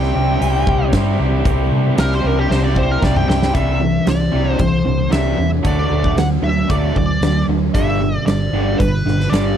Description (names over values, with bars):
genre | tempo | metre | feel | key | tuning
classic rock | 115 BPM | 4/4 | straight | unclear | A4 = 441 Hz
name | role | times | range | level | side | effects
smooth overdriven lead guitar | melody | 0.0-9.6 s | G4 to G5 | -23 LUFS | equal | wah, slapback echo
raw garage guitar | riff | 0.0-9.6 s | G2 to G4 | -19 LUFS | right 1 dB | overdrive
hollow-body short-scale fingered electric bass | bass | 0.0-9.5 s | G1 to C3 | -19 LUFS | equal | none
huge arena drum kit | drums | 0.0-9.4 s | hi-hat, kick drum, snare drum, toms | -21 LUFS | equal | none
room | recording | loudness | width
little or no reverb | none | -14 LUFS | side -9 dB against mid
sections
0.0-3.6 A section; 3.6-9.6 B section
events
lead electric guitar solo 0.0-3.6; drum fill 2.5-3.6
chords
0.0 C; 5.7 D; 7.7 G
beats
0.41 0.94 | 1.46 1.98 2.51 3.03 | 3.55 4.08 4.60 5.13 | 5.65 6.17 6.70 7.22 | 7.75 8.27 8.79 9.32